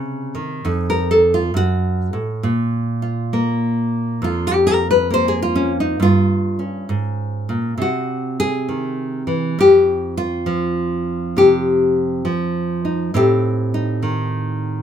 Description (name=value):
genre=solo jazz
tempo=67 BPM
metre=4/4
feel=swing 66% on 8ths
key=unclear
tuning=A4 = 439 Hz
part: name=nylon-string guitar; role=solo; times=0.0-14.8 s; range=F2 to C5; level=-16 LUFS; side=equal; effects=none
room=moderate club reverb, RT60 0.5 s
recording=minimal, uncompressed stereo recording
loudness=-16 LUFS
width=side -9 dB against mid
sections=0.0-14.8 A section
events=nylon-string guitar solo 0.0-14.8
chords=0.0 Cm; 0.6 F7b9; 2.4 Bb5; 6.0 Gdim; 7.8 Caug; 9.6 F5; 13.1 Am7b5